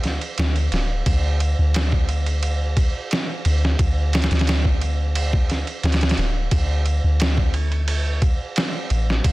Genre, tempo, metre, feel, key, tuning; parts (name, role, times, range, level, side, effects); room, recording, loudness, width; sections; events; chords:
trip hop; 88 BPM; 4/4; straight; A4 = 440 Hz
soft 808-style bass; bass; 0.0-9.3 s; D1 to D2; -20 LUFS; equal
trip hop sampler-style drum kit; drums; 0.0-9.3 s; kick drum, ride cymbal, snare drum; -22 LUFS; equal
digital ambience; dense, heavily limited modern master; -18 LUFS; side -19 dB against mid
0.0-9.3 A section